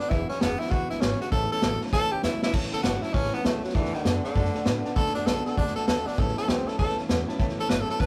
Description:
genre	rockabilly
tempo	198 BPM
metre	4/4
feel	swing 62% on 8ths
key	A major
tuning	A4 = 440 Hz
part	breathy tenor saxophone	melody	0.0-8.1 s	D3 to B4	-31 LUFS	equal	none
part	picked steel-string acoustic guitar	accompaniment	0.0-8.1 s	E2 to F#4	-41 LUFS	equal	none
part	warm upright piano	accompaniment	0.0-8.1 s	B4 to B5	-41 LUFS	equal	none
part	electric guitar through a small old amp	riff	0.0-8.1 s	E2 to B3	-38 LUFS	equal	none
part	upright bass	bass	0.0-8.1 s	E1 to A2	-36 LUFS	equal	none
part	vintage drum kit	drums	0.0-8.1 s	crash cymbal, hi-hat, kick drum, snare drum	-29 LUFS	equal	none
room	moderate studio ambience, RT60 0.5 s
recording	rough rehearsal-room recording, warm saturation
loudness	-26 LUFS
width	mono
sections	0.0-2.5 A section; 2.5-8.1 B section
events	drum fill 1.9-2.5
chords	0.1 E7; 1.3 A; 3.8 D; 6.2 A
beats	| 0.11 0.41 0.71 1.02 | 1.32 1.62 1.93 2.23 | 2.54 2.84 3.14 3.45 | 3.75 4.05 4.36 4.66 | 4.96 5.27 5.57 5.88 | 6.18 6.48 6.79 7.09 | 7.39 7.70 8.00

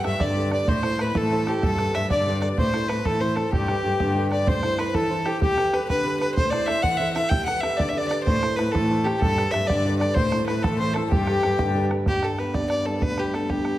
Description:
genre	celtic folk, Celtic jig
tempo	126 BPM (dotted quarters)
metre	6/8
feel	straight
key	G major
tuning	A4 = 440 Hz
part	warm fiddle	melody	0.0-13.8 s	G4 to G5	-25 LUFS	equal	none
part	accordion	second line	0.0-11.9 s	G4 to G5	-30 LUFS	left 5 dB	none
part	warm grand piano	accompaniment	0.0-13.8 s	D2 to C5	-28 LUFS	right 1 dB	none
part	warm cello	bass	0.0-4.4, 8.3-12.0 s	G2 to A2	-27 LUFS	equal	none
part	bodhran	percussion	0.0-13.7 s	none	-28 LUFS	right 1 dB	none
part	hand-pumped harmonium	drone	12.1-13.8 s	G2	-33 LUFS	left 1 dB	none
room	wet recital hall reverb, RT60 1.5 s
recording	none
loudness	-20 LUFS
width	side -14 dB against mid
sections	0.0-4.5 A section; 4.5-12.1 A section; 12.1-13.8 B section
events	none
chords	0.0 Gadd9; 0.7 Am; 1.6 Gadd9; 2.6 Am; 3.5 Gadd9; 4.5 Am; 5.4 Gadd9; 6.4 Am; 7.3 Gadd9; 8.3 Am; 9.2 Gadd9; 10.2 Am; 11.1 Gadd9; 12.1 G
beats	0.20 | 0.68 1.15 | 1.62 2.10 | 2.57 3.05 | 3.52 4.00 | 4.47 4.94 | 5.42 5.89 | 6.37 6.84 | 7.32 7.79 | 8.27 8.74 | 9.21 9.69 | 10.16 10.64 | 11.11 11.59 | 12.06 12.54 | 13.02 13.49

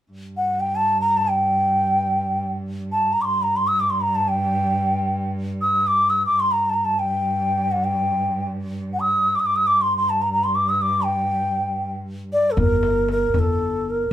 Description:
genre	Persian modal ensemble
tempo	free time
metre	none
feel	none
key	G avaz esfahan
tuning	A4 = 438 Hz
part	rich cello	drone	0.1-12.6 s	G2	-27 LUFS	right 1 dB	none
part	mellow bansuri	melody	0.4-14.1 s	A4 to E6-44c	-19 LUFS	equal	none
part	upright bass	bass	12.6-14.0 s	G1	-23 LUFS	left 1 dB	none
part	tombak	percussion	12.6-13.9 s	none	-24 LUFS	left 1 dB	none
room	wet studio reverb, RT60 0.6 s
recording	band playing live in one room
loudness	-18 LUFS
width	side -12 dB against mid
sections	0.1-12.6 A section; 12.6-14.1 B section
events	none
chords	none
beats	free time

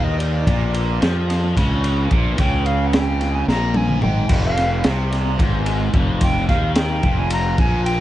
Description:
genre	psychedelic rock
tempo	220 BPM (eighths)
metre	7/8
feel	straight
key	unclear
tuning	A4 = 441 Hz
part	silver concert flute	melody	0.0-8.0 s	D5 to Bb5	-25 LUFS	equal	tape echo
part	overdriven electric guitar	riff	0.0-8.0 s	F2 to F3	-24 LUFS	equal	phaser
part	fuzz fingered electric bass	bass	0.0-8.0 s	F1 to F2	-20 LUFS	equal	overdrive
part	crunchy breakbeat drum kit	drums	0.2-8.0 s	crash cymbal, kick drum, ride cymbal, snare drum, toms	-20 LUFS	equal	none
room	studio ambience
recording	echo-heavy mix, nothing above 10.7 kHz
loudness	-16 LUFS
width	side -14 dB against mid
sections	0.0-8.0 A section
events	flute solo 0.0-8.0; drum fill 3.5-4.3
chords	0.0 Bb5; 4.3 Fm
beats	0.21 | 0.48 0.76 1.03 1.30 1.57 1.85 2.12 | 2.39 2.67 2.94 3.21 3.49 3.76 4.03 | 4.31 4.58 4.85 5.13 5.40 5.67 5.95 | 6.22 6.49 6.77 7.04 7.32 7.59 7.86

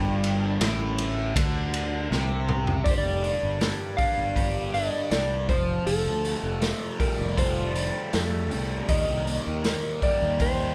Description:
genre	psychedelic rock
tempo	80 BPM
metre	4/4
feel	straight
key	G minor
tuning	A4 = 440 Hz
part	clean lap steel guitar	melody	0.0-10.7 s	A4 to G5	-32 LUFS	equal	none
part	mellow tonewheel organ	sustained chords	0.0-10.7 s	D3 to A5	-45 LUFS	equal	none
part	fuzz guitar	riff	0.0-10.7 s	G2 to G4	-32 LUFS	equal	distortion, phaser
part	fuzz fingered electric bass	bass	0.0-10.7 s	F1 to F2	-32 LUFS	equal	overdrive
part	congas	percussion	0.0-2.8 s	none	-42 LUFS	equal	none
part	raw garage drum kit	drums	0.2-10.6 s	hi-hat, kick drum, ride cymbal, snare drum, toms	-31 LUFS	equal	none
room	light reverb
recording	band playing live in one room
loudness	-26 LUFS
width	mono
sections	0.0-2.9 A section; 2.9-10.7 B section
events	drum fill 2.1-2.9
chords	0.0 Gm; 5.5 Fadd9; 8.9 Eb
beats	0.61 1.36 2.11 | 2.86 3.61 4.36 5.12 | 5.87 6.62 7.38 8.13 | 8.89 9.64 10.40

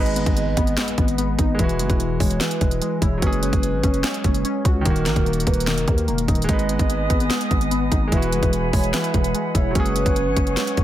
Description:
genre	hip hop, trap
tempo	147 BPM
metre	4/4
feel	half-time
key	G# minor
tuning	A4 = 440 Hz
part	hollow clarinet-like synth lead	second line	0.0-10.5 s	A#4 to D#5	-28 LUFS	right 3 dB	chorus, tape echo
part	clear concert grand piano	accompaniment	0.0-10.8 s	D#3 to B4	-30 LUFS	right 3 dB	low-pass filter
part	warbly lo-fi synth keys	arpeggios	0.0-10.8 s	D#3 to F#4	-24 LUFS	left 2 dB	chorus, low-pass filter, tape echo
part	growling 808-style bass	bass	0.0-10.8 s	D#1 to D#2	-24 LUFS	equal	none
part	impact	sound effects	0.0-1.6 s	none	-36 LUFS	left 1 dB	none
part	trap drum kit	drums	0.1-10.8 s	handclaps, hi-hat, kick drum, snare drum	-21 LUFS	equal	none
part	small flute group	sustained chords	6.5-10.8 s	G#4 to D#6	-29 LUFS	right 1 dB	none
room	digital ambience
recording	dense, heavily limited modern master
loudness	-18 LUFS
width	side -12 dB against mid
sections	0.0-10.8 A section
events	impact 0.0-1.6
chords	0.0 G#m; 1.6 Eadd9; 3.2 F#sus2; 4.9 D#m; 6.5 G#m; 8.1 Eadd9; 9.8 F#sus2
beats	0.37 0.77 1.18 | 1.59 2.00 2.41 2.81 | 3.22 3.63 4.04 4.45 | 4.86 5.26 5.67 6.08 | 6.49 6.90 7.30 7.71 | 8.12 8.53 8.94 9.35 | 9.75 10.16 10.57

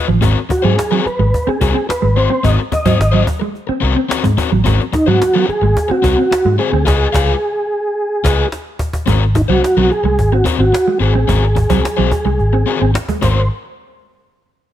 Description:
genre	funk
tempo	108 BPM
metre	4/4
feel	straight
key	Ab mixolydian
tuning	A4 = 440 Hz
part	crunchy overdriven guitar	accompaniment	0.0-13.4 s	C4 to F5	-20 LUFS	left 8 dB	none
part	mellow electric guitar	riff	0.1-13.4 s	F3 to C4	-20 LUFS	right 5 dB	none
part	vintage muted fingered electric bass	bass	0.1-13.5 s	Ab1 to Ab2	-15 LUFS	equal	none
part	cajon	drums	0.2-13.4 s	none	-22 LUFS	equal	none
part	mellow tonewheel organ	melody	0.5-13.5 s	Eb4 to Eb5	-17 LUFS	right 1 dB	chorus vibrato
room	little or no reverb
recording	none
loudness	-12 LUFS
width	side -11 dB against mid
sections	0.0-9.1 A section; 9.1-13.5 B section; 13.5-14.7 C section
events	band accent 6.9-9.1; drum fill 8.0-9.1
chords	0.2 Ab9; 6.9 Db9; 9.1 Ab9; 13.5 N.C.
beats	| 0.22 0.78 1.33 1.88 | 2.44 2.99 3.55 4.10 | 4.65 5.21 5.76 6.31 | 6.87 7.42 7.97 8.52 | 9.08 9.63 10.18 10.73 | 11.29 11.84 12.39 12.95

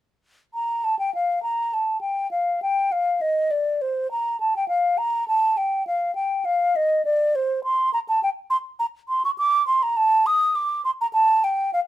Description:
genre	classical, baroque-style fantasia for unaccompanied flute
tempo	102 BPM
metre	3/4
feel	rubato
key	Bb major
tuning	A4 = 439 Hz
part	mellow hollow silver concert flute	solo	0.5-11.8 s	C5 to Eb6	-20 LUFS	equal	none
room	light reverb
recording	minimal, uncompressed stereo recording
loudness	-20 LUFS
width	side -14 dB against mid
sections	0.5-11.9 A section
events	none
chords	none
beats	| 0.52 1.13 1.73 | 2.31 2.91 3.50 | 4.10 4.69 5.28 | 5.86 6.45 7.05 | 7.63 8.21 8.79 | 9.37 9.95 10.54 | 11.12 11.72

